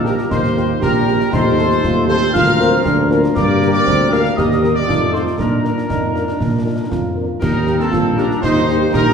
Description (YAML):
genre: military-style march for wind band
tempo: 118 BPM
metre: 2/4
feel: straight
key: unclear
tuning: A4 = 440 Hz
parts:
  - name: dark trumpet section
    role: melody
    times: 0.0-9.1 s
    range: A4 to F5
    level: -22 LUFS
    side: equal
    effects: none
  - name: mellow wooden piccolo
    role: second line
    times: 0.0-9.1 s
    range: A5 to F6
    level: -23 LUFS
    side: left 2 dB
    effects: none
  - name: mellow woodwind section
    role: second line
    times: 0.0-9.1 s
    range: C4 to Bb4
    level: -24 LUFS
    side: left 1 dB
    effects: none
  - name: warm euphonium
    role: second line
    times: 0.0-9.1 s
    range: Bb3 to G4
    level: -21 LUFS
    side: right 2 dB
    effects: none
  - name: mellow French horn section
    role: accompaniment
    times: 0.0-8.8 s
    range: Bb3 to Bb4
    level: -24 LUFS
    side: left 2 dB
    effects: none
  - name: mellow trombone section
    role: sustained chords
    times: 0.0-9.1 s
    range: F3 to Eb4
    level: -26 LUFS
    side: right 1 dB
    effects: none
  - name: dark tuba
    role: bass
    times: 0.0-9.1 s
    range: Bb1 to Bb2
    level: -18 LUFS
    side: equal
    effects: none
  - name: concert snare drum, concert bass drum and clash cymbals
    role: drums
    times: 0.1-9.1 s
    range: none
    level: -23 LUFS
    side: left 1 dB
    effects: none
room: wet scoring stage reverb, RT60 1.8 s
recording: heard from further back in the room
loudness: -13 LUFS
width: side -6 dB against mid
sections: 0.0-7.4 A section; 7.4-9.1 A section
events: none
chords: 0.0 Eb; 1.3 F7/Eb; 2.3 Bb/D; 3.4 Gm; 4.4 Eb; 4.9 F7; 5.4 Bb; 7.4 Eb